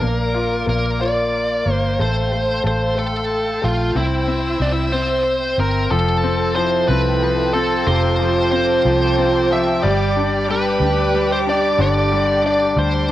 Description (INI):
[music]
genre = six-eight pop ballad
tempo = 61 BPM (dotted quarters)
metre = 6/8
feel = straight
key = F lydian from 5.9 s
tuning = A4 = 440 Hz
[part]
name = bluesy overdriven lead guitar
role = melody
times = 0.0-13.1 s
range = E4 to E5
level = -20 LUFS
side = right 1 dB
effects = distortion, cassette tape
[part]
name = bright concert grand piano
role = accompaniment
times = 0.0-13.1 s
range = C3 to F4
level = -22 LUFS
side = left 6 dB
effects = cassette tape
[part]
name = warm studio string section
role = sustained chords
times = 0.0-13.1 s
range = G4 to E6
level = -26 LUFS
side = equal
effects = cassette tape
[part]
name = vintage muted fingered electric bass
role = bass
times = 0.0-13.1 s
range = F1 to D2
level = -22 LUFS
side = right 1 dB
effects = none
[part]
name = warm French horn section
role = second line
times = 5.9-13.1 s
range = C4 to G4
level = -24 LUFS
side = right 7 dB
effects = cassette tape
[sound]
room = moderate spring reverb, RT60 1.3 s, studio ambience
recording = home recording on cassette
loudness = -15 LUFS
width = side -13 dB against mid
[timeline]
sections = 0.0-5.9 A section; 5.9-13.1 B section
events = none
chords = 0.0 Bb; 2.0 Fadd9/A; 3.9 C; 5.9 Fadd9; 9.8 G